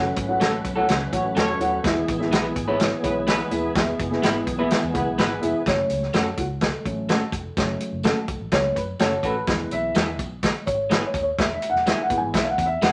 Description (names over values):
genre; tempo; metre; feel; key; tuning
uptempo 1960s-style soul; 126 BPM; 4/4; straight; F# minor; A4 = 440 Hz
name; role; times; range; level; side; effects
dark upright piano; accompaniment; 0.0-12.9 s; E3 to G#5; -27 LUFS; equal; none
tonewheel organ; sustained chords; 0.0-5.6 s; E3 to B4; -32 LUFS; equal; overdrive, chorus vibrato, slow rotary speaker
vintage muted fingered electric bass; bass; 0.0-12.9 s; D#1 to F#2; -35 LUFS; equal; none
vintage drum kit; drums; 0.2-12.9 s; hi-hat, kick drum, snare drum; -26 LUFS; equal; none
tambourine; percussion; 0.2-12.9 s; none; -45 LUFS; equal; none
electric guitar through a small old amp; stabs; 0.4-12.9 s; G#3 to B4; -30 LUFS; equal; none
dark horn section; second line; 1.1-5.6 s; B3 to C#5; -32 LUFS; equal; none
room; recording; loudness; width
wet studio reverb, RT60 0.7 s; none; -23 LUFS; mono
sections
0.0-5.7 A section; 5.7-12.9 B section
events
upright piano solo 5.7-12.9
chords
0.0 F#m; 9.5 E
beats
0.41 0.89 1.37 | 1.84 2.32 2.80 3.27 | 3.75 4.23 4.71 5.18 | 5.66 6.14 6.62 7.09 | 7.57 8.05 8.53 9.00 | 9.48 9.96 10.43 10.91 | 11.39 11.87 12.34 12.82